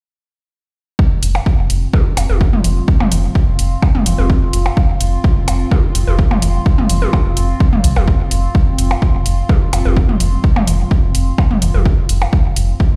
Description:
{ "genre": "minimal techno", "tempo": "127 BPM", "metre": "4/4", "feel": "straight", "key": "unclear", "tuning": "A4 = 440 Hz", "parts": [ { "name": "electronic kick drum", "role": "drums", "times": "1.0-12.9 s", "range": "none", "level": "-16 LUFS", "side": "equal", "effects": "overdrive" }, { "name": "warbly tape-like pad", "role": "texture", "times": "1.6-13.0 s", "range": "C4 to C6", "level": "-28 LUFS", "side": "equal", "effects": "chorus, built-in reverb, phaser, sidechain pumping" }, { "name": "round analog bass", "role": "bass", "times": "1.2-13.0 s", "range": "F1 to C2", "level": "-18 LUFS", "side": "equal", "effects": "sidechain pumping" }, { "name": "electronic hi-hat", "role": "drums", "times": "1.2-12.7 s", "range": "none", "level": "-25 LUFS", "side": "equal", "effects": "none" }, { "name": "electronic percussion blips and toms", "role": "percussion", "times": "1.4-12.3 s", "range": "none", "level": "-22 LUFS", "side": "equal", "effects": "digital delay" } ], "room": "light reverb", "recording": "played on a big sound system in a bare room, large studio reverb", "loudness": "-14 LUFS", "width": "mono", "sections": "1.0-13.0 A section", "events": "filter sweep on analog synth bass 1.0-13.0", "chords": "1.0 F5", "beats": "| 0.99 1.46 1.94 2.41 | 2.88 3.35 3.83 4.30 | 4.77 5.24 5.71 6.19 | 6.66 7.13 7.60 8.08 | 8.55 9.02 9.49 9.97 | 10.44 10.91 11.38 11.86 | 12.33 12.80" }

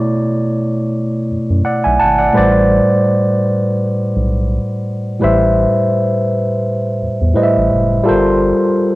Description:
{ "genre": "R&B", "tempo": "84 BPM", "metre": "4/4", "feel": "swing 53% on 16ths", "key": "A dorian", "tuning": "A4 = 440 Hz", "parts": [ { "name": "barky tine electric piano", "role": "accompaniment", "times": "0.0-9.0 s", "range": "A2 to A5", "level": "-13 LUFS", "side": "equal", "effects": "phaser" }, { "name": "round analog bass", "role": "bass", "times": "1.3-8.5 s", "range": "F#1 to F#2", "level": "-18 LUFS", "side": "equal", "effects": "tube saturation" } ], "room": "moderate spring reverb, RT60 1.9 s", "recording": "home recording on cassette", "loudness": "-12 LUFS", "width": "side -18 dB against mid", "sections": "0.0-9.0 A section", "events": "none", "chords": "0.0 Bm11; 2.4 Am11; 8.1 Gm11", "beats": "0.21 0.93 1.64 | 2.35 3.07 3.78 4.50 | 5.21 5.93 6.64 7.35 | 8.07 8.78" }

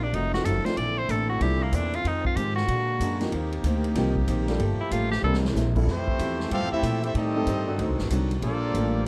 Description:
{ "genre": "jazz, big band swing", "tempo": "188 BPM", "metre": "4/4", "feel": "swing 64% on 8ths", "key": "F major", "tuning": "A4 = 440 Hz", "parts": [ { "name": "bright tenor saxophone", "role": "melody", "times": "0.0-5.4 s", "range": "Bb3 to D5", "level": "-31 LUFS", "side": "equal", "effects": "none" }, { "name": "archtop guitar, miked and amplified", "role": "accompaniment", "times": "0.0-9.1 s", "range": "F2 to A4", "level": "-36 LUFS", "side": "equal", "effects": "none" }, { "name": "brilliant trombone section", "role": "sustained chords", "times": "0.0-9.1 s", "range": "C3 to G4", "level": "-37 LUFS", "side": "equal", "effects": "none" }, { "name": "upright bass", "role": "bass", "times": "0.0-9.1 s", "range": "F1 to Bb2", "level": "-29 LUFS", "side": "equal", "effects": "none" }, { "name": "swinging big-band drum kit", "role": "drums", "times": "0.1-8.8 s", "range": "crash cymbal, hi-hat, kick drum, ride cymbal, snare drum", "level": "-36 LUFS", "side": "equal", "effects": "none" }, { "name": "warm baby grand piano", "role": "accompaniment", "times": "0.3-7.8 s", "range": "F3 to Bb4", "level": "-33 LUFS", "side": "equal", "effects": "none" }, { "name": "clear trumpet section", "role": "melody", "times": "5.9-9.0 s", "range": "A3 to F5", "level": "-33 LUFS", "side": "equal", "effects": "slapback echo" }, { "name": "clear trombone section", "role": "second line", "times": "5.9-9.1 s", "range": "E3 to F4", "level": "-34 LUFS", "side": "equal", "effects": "none" } ], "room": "little or no reverb", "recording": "none", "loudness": "-26 LUFS", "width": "mono", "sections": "0.0-5.9 A section; 5.9-9.1 B section", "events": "tenor saxophone solo 0.0-5.9; drum fill 5.2-5.6", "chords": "0.1 F7b9; 0.8 Bbmaj9#11; 2.0 Fm7; 2.7 Bb7b13; 3.3 Eb6; 4.6 Gm9; 5.2 C7; 5.9 Fmaj9; 7.1 Am7b5; 7.8 D7b9; 8.4 Gm9", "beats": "0.13 0.45 | 0.77 1.09 1.41 1.72 | 2.04 2.36 2.68 3.00 | 3.32 3.64 3.96 4.28 | 4.59 4.91 5.23 5.55 | 5.87 6.19 6.51 6.83 | 7.15 7.47 7.79 8.11 | 8.43 8.74 9.06" }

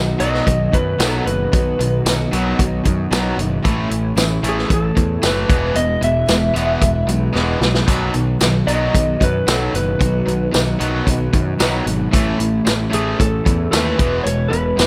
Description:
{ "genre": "classic rock", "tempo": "113 BPM", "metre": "4/4", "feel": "straight", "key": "B mixolydian", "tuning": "A4 = 440 Hz", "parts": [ { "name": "picked steel-string acoustic guitar", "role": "accompaniment", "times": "0.0-14.9 s", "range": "E2 to F#4", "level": "-29 LUFS", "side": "equal", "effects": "none" }, { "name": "tonewheel organ", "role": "sustained chords", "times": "0.0-14.9 s", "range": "F#3 to D#5", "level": "-36 LUFS", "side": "equal", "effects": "none" }, { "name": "distorted electric guitar", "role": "riff", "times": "0.0-14.9 s", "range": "E2 to B3", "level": "-26 LUFS", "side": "equal", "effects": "overdrive" }, { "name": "overdriven electric guitar", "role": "riff", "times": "0.0-14.9 s", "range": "A2 to B3", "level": "-27 LUFS", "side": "equal", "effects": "none" }, { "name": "fuzz picked electric bass", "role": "bass", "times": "0.0-14.9 s", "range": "E1 to F#2", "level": "-24 LUFS", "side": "equal", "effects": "overdrive" }, { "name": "electric slide guitar", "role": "melody", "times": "0.2-14.9 s", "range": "G#4 to E5", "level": "-23 LUFS", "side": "equal", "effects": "slapback echo" }, { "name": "vintage drum kit", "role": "drums", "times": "0.2-14.9 s", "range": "hi-hat, kick drum, snare drum, splash cymbal, tambourine", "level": "-21 LUFS", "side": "equal", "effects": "none" } ], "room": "light reverb", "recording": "none", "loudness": "-17 LUFS", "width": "mono", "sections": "0.0-14.9 A section", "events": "drum fill 7.4-7.9", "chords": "0.0 B; 3.7 A; 5.5 E; 7.9 B; 12.1 A; 14.0 E", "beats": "0.46 1.00 | 1.53 2.06 2.59 3.12 | 3.65 4.18 4.71 5.24 | 5.77 6.30 6.83 7.36 | 7.89 8.42 8.95 9.48 | 10.01 10.54 11.07 11.60 | 12.13 12.66 13.19 13.72 | 14.25 14.78" }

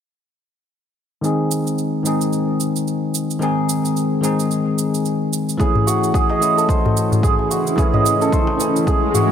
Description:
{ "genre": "organic downtempo", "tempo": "110 BPM", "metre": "4/4", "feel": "swing 58% on 16ths", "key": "G# phrygian dominant", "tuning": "A4 = 440 Hz", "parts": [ { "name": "bell-like tine electric piano", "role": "accompaniment", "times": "1.2-9.3 s", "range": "D#3 to G#4", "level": "-19 LUFS", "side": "left 1 dB", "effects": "lush chorus, sidechain pumping, low-pass filter, digital delay" }, { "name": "shaker", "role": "drums", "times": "1.2-9.3 s", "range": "none", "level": "-27 LUFS", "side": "right 9 dB", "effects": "none" }, { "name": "santur", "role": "arpeggios", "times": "5.6-9.3 s", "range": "F#4 to D#5", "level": "-18 LUFS", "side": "right 2 dB", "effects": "digital delay" }, { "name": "electronic kick drum", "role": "drums", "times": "5.6-9.0 s", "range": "none", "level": "-19 LUFS", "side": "equal", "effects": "none" }, { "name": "darbuka", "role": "percussion", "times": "5.8-9.3 s", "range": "none", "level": "-21 LUFS", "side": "left 2 dB", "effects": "none" }, { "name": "granular cloud pad", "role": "sustained chords", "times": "6.6-9.3 s", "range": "C#4 to E4", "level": "-24 LUFS", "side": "right 1 dB", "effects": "built-in reverb, sidechain pumping" }, { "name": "swell", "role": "sound effects", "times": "9.0-9.3 s", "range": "none", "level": "-22 LUFS", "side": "left 3 dB", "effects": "none" } ], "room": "light reverb, digital ambience", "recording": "none", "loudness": "-16 LUFS", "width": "side -8 dB against mid", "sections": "1.2-9.3 A section", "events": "filter sweep on tine electric piano 1.2-9.3; swell 9.0-9.3", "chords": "1.2 G#; 5.6 A", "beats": "| 1.23 1.78 2.33 2.87 | 3.42 3.96 4.51 5.05 | 5.60 6.14 6.69 7.23 | 7.78 8.32 8.87" }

